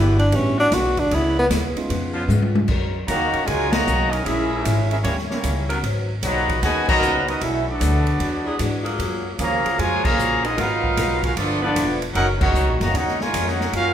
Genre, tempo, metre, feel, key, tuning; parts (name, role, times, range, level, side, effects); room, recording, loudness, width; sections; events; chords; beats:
jazz, big band swing; 152 BPM; 4/4; swing 66% on 8ths; F# major; A4 = 441 Hz
warm tenor saxophone; melody; 0.0-1.5 s; B3 to F#4; -19 LUFS; equal
picked steel-string acoustic guitar; accompaniment; 0.0-13.9 s; F#2 to A#4; -30 LUFS; left 4 dB
bright saxophone section; sustained chords; 0.0-12.3 s; D#3 to B4; -30 LUFS; left 1 dB
upright bass; bass; 0.0-13.9 s; E1 to G#2; -24 LUFS; equal
swinging big-band drum kit; drums; 0.2-13.8 s; crash cymbal, hi-hat, kick drum, ride cymbal, snare drum, toms; -27 LUFS; equal
dark baby grand piano; accompaniment; 0.3-2.3 s; G3 to F#4; -29 LUFS; right 2 dB
clear trumpet section; melody; 3.1-13.9 s; A#3 to A#5; -22 LUFS; left 1 dB
warm trombone section; second line; 3.1-13.9 s; A#2 to F#4; -25 LUFS; right 3 dB
moderate recital hall reverb, RT60 1.3 s; recorded in a church or concert hall; -18 LUFS; side -10 dB against mid
0.0-2.7 A section; 2.7-13.9 B section
tenor saxophone solo 0.0-2.7; drum fill 2.3-2.7; band accent 3.7, 6.8, 10.0, 12.3
0.0 Em7; 1.1 C#m7; 1.9 C#7; 2.7 F#6; 4.3 A#m7b5; 5.0 D#7b9; 5.8 G#m11; 7.4 Bm7; 8.2 E9; 9.0 F#maj9; 10.6 G#m9; 11.4 G13; 12.1 F#6
0.32 0.72 | 1.11 1.50 1.90 2.29 | 2.68 3.08 3.47 3.87 | 4.26 4.65 5.05 5.44 | 5.83 6.23 6.62 7.02 | 7.41 7.81 8.20 8.60 | 8.99 9.38 9.78 10.18 | 10.57 10.96 11.36 11.75 | 12.15 12.54 12.94 13.33 | 13.72